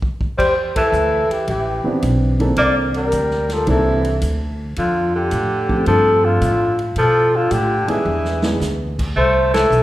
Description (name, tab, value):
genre	jazz, small-group swing and bop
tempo	109 BPM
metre	4/4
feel	swing 68% on 8ths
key	C major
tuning	A4 = 440 Hz
part	vintage drum kit	drums	0.0-9.8 s	crash cymbal, hi-hat, kick drum, ride cymbal, snare drum	-28 LUFS	equal	none
part	upright bass	bass	0.2-9.8 s	A1 to B2	-21 LUFS	equal	none
part	breathy flugelhorn	melody	0.4-9.8 s	F4 to D5	-18 LUFS	left 1 dB	none
part	clear tenor saxophone	second line	0.4-9.8 s	D3 to Bb3	-22 LUFS	right 2 dB	none
part	warm baby grand piano	accompaniment	1.8-8.6 s	E3 to A4	-22 LUFS	right 1 dB	none
room	wet recital hall reverb, RT60 1.5 s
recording	recorded in a church or concert hall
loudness	-15 LUFS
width	side -15 dB against mid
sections	0.4-9.8 A section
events	band accent 0.7, 9.4; drum fill 8.1-8.6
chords	0.4 Cmaj9; 2.6 C13; 4.8 F69; 7.0 G13b9; 8.1 E7; 9.2 Amadd9